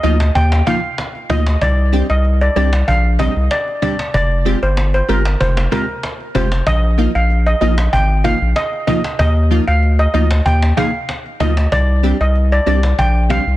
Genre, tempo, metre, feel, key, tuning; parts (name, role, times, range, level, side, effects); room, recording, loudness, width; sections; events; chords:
dancehall; 95 BPM; 4/4; straight; C minor; A4 = 440 Hz
steel pan; melody; 0.0-13.4 s; Bb4 to G5; -19 LUFS; equal; tape echo
wavetable chord stab; accompaniment; 0.0-13.4 s; F3 to Ab4; -20 LUFS; equal
saturated sub bass; bass; 0.0-13.6 s; F1 to Eb2; -14 LUFS; equal
cajon; drums; 0.0-13.5 s; -23 LUFS; equal; vintage 12-bit sampler grit
small room ambience; dense, heavily limited modern master; -13 LUFS; side -15 dB against mid
0.0-13.6 A section
0.0 Ebsus2; 1.6 Csus2; 4.1 Fmadd9; 6.7 Bbsus4; 9.2 Ebsus2; 11.7 Csus2